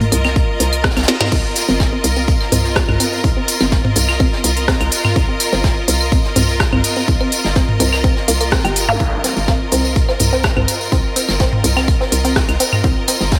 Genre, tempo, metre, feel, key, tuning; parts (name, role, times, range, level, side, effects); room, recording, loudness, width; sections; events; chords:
minimal techno; 125 BPM; 4/4; straight; C minor; A4 = 440 Hz
resonant blip pluck; riff; 0.0-13.1 s; Bb3 to C5; -25 LUFS; equal; phaser, sidechain pumping, delay
hollow knocking FM bass; bass; 0.0-13.4 s; G1 to C2; -22 LUFS; equal; tube saturation, sidechain pumping
jazz brush drum kit; drums; 0.0-13.4 s; hi-hat, snare drum; -31 LUFS; equal
electronic toms and claves; percussion; 0.0-13.2 s; -23 LUFS; equal; diffuse ambient delay
bright studio string section; texture; 0.0-13.4 s; F4 to Eb5; -24 LUFS; equal; sidechain pumping
minimal click drum kit; drums; 0.1-13.2 s; crash cymbal, hi-hat, rim click, snare drum; -22 LUFS; equal
electronic kick drum; drums; 0.4-13.4 s; -19 LUFS; equal
tambourine; percussion; 1.3-13.4 s; -26 LUFS; equal
zap and riser; sound effects; 8.9-9.0, 12.8-13.4 s; -30 LUFS; equal
moderate lush hall reverb, RT60 2.1 s; dreamy mix soaked in reverb; -16 LUFS; mono
0.0-13.4 A section
filter sweep on synth arpeggio sound 0.0-13.4; drum fill 1.1
0.0 Cm